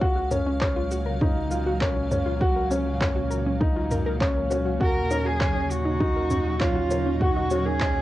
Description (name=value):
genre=piano and strings electronica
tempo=100 BPM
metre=4/4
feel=straight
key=unclear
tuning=A4 = 440 Hz
part: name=granular cloud pad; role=sustained chords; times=0.0-8.0 s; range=Bb2 to F5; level=-31 LUFS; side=right 1 dB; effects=built-in reverb, sidechain pumping, cassette tape
part: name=warbly dusty pluck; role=arpeggios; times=0.0-7.9 s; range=Db4 to Bb4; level=-32 LUFS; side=left 2 dB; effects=chorus, sidechain pumping, cassette tape, tape echo
part: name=dark upright piano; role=riff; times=0.0-8.0 s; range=Db4 to Gb4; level=-27 LUFS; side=left 1 dB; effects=cassette tape, tape echo
part: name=round analog bass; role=bass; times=0.0-8.0 s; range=Db2 to Eb2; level=-29 LUFS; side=equal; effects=sidechain pumping
part: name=electronic kick drum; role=drums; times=0.0-7.9 s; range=none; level=-26 LUFS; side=equal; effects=overdrive, cassette tape
part: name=organic electronic drum kit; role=drums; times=0.3-7.9 s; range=handclaps, shaker, toms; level=-31 LUFS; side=right 1 dB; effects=cassette tape
part: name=dark cello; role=melody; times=4.8-8.0 s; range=F4 to Bb4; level=-27 LUFS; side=right 2 dB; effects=cassette tape
room=light reverb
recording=home recording on cassette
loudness=-22 LUFS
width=side -15 dB against mid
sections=0.0-8.0 A section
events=none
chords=0.0 Gbmaj7/Db; 4.8 Ebm7